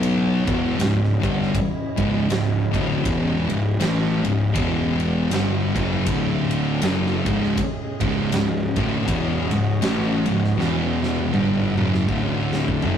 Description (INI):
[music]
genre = stoner and doom metal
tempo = 80 BPM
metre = 4/4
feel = swing 58% on 8ths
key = C# minor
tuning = A4 = 439 Hz
[part]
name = organ-like drone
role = sustained chords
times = 0.0-13.0 s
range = B3 to F#5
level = -31 LUFS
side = left 1 dB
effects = ensemble chorus, built-in reverb
[part]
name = thick fuzz guitar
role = riff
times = 0.0-13.0 s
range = C#2 to B3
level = -24 LUFS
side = left 4 dB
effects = distortion
[part]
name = thick fuzz guitar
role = riff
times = 0.0-13.0 s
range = C#2 to B3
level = -24 LUFS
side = right 4 dB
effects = distortion
[part]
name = fuzz picked electric bass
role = bass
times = 0.0-13.0 s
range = C#1 to B1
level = -27 LUFS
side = equal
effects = overdrive
[part]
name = big rock drum kit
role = drums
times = 0.0-13.0 s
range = kick drum, ride cymbal, snare drum, toms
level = -26 LUFS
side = right 1 dB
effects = none
[sound]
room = moderate stone room reverb, RT60 1.0 s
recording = rough rehearsal-room recording, tube saturation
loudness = -19 LUFS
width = side -8 dB against mid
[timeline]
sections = 0.0-13.0 A section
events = drum fill 10.6-13.0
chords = 0.4 C#m; 4.6 E5; 5.3 C#m; 6.1 D5; 6.8 C#m; 10.6 E5; 11.3 C#m; 12.1 D5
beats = 0.04 0.79 | 1.54 2.30 3.05 3.80 | 4.55 5.31 6.06 6.81 | 7.57 8.32 9.08 9.83 | 10.59 11.34 12.10 12.86